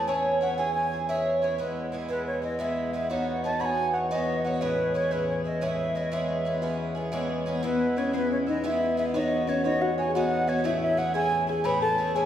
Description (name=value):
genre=celtic folk, Celtic slip jig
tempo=119 BPM (dotted quarters)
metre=9/8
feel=straight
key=E major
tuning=A4 = 438 Hz
part: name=wooden flute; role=melody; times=0.0-12.3 s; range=B4 to B5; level=-28 LUFS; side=right 1 dB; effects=none
part: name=picked twelve-string acoustic guitar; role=accompaniment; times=0.0-12.3 s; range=A2 to C#5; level=-29 LUFS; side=right 1 dB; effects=none
part: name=pedal harmonium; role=drone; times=0.0-12.3 s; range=E2 to E3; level=-33 LUFS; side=left 2 dB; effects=none
part: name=folk marimba with soft mallets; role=second line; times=7.6-12.3 s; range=B3 to B4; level=-29 LUFS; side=left 3 dB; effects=none
room=wet recital hall reverb, RT60 1.5 s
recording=heard from further back in the room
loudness=-24 LUFS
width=side -10 dB against mid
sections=0.0-7.6 A section; 7.6-12.3 A section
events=none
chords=0.1 C#m; 1.6 E; 3.1 Badd9; 4.6 Amaj7; 6.1 E6; 7.6 E; 9.1 Badd9; 10.7 Amaj7